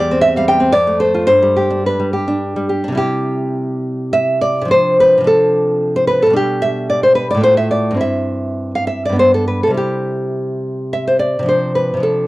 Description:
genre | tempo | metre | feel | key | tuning
romantic piece for solo classical guitar | 98-120 BPM | 3/4 | rubato | C major | A4 = 440 Hz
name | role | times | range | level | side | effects
nylon-string guitar | solo | 0.0-12.3 s | E2 to G5 | -13 LUFS | equal | none
room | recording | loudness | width
light reverb | worn, warbling old tape, cassette tape, warbly pitch drift | -13 LUFS | side -18 dB against mid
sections
0.0-3.0 A section; 3.0-12.3 B section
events
none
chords
0.0 C/E; 0.7 F; 1.3 G; 3.0 C; 4.7 Dm7/C; 6.4 G/B; 7.4 F/A; 8.0 C/G; 9.2 G; 9.8 C; 11.5 Dm7/C

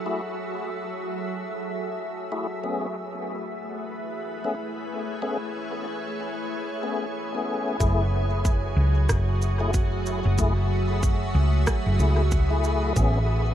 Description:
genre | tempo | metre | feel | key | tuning
ambient dub | 93 BPM | 4/4 | swing 60% on 16ths | F# minor | A4 = 441 Hz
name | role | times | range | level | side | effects
soft additive organ-like pad | sustained chords | 0.0-13.5 s | F#3 to E5 | -30 LUFS | right 1 dB | ensemble chorus, built-in reverb
tonewheel organ | stabs | 0.1-13.2 s | A3 to G#4 | -31 LUFS | left 3 dB | chorus vibrato, stopped rotary speaker, dub echo
hollow-body short-scale fingered electric bass | bass | 7.8-13.5 s | F#1 to C#2 | -22 LUFS | equal | none
electronic cabasa and rim click | drums | 7.8-13.1 s | none | -33 LUFS | right 1 dB | low-pass filter on perc, low-pass filter on snare, dub echo
electronic kick drum | drums | 7.8-13.1 s | none | -24 LUFS | equal | none
room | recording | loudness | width
light reverb | none | -23 LUFS | side -11 dB against mid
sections
0.0-7.8 A section; 7.8-13.5 B section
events
filter sweep on drum 0.0-7.8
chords
0.0 F#m9; 2.6 Amaj9; 7.8 F#m9; 13.0 Amaj9

